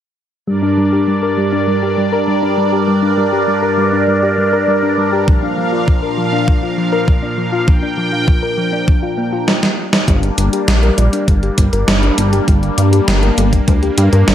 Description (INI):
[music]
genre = synthwave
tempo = 100 BPM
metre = 4/4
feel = straight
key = G minor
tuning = A4 = 441 Hz
[part]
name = phased analog pad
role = sustained chords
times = 0.5-14.3 s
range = G2 to G5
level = -16 LUFS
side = equal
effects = phaser, chorus, sidechain pumping
[part]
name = thumb-piano-like synth pluck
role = arpeggios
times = 0.5-14.3 s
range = F3 to Bb4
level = -18 LUFS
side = left 2 dB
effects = chorus, digital delay
[part]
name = electronic kick drum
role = drums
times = 5.3-13.8 s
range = none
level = -12 LUFS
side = equal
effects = none
[part]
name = gated 80s digital drum machine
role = drums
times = 9.5-14.3 s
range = hi-hat, snare drum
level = -17 LUFS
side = right 1 dB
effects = gated reverb, gated reverb snare
[part]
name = chorused synth bass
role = bass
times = 10.1-14.3 s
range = G1 to G2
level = -14 LUFS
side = equal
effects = sidechain pumping
[sound]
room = light reverb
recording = none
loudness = -12 LUFS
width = side -10 dB against mid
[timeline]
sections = 0.5-10.1 A section; 10.1-14.3 B section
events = filter sweep on synth arpeggio sound 0.5-10.1, 10.1-14.3; drum fill 9.5-10.1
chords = 0.5 Gm; 5.3 Bb; 10.1 Gm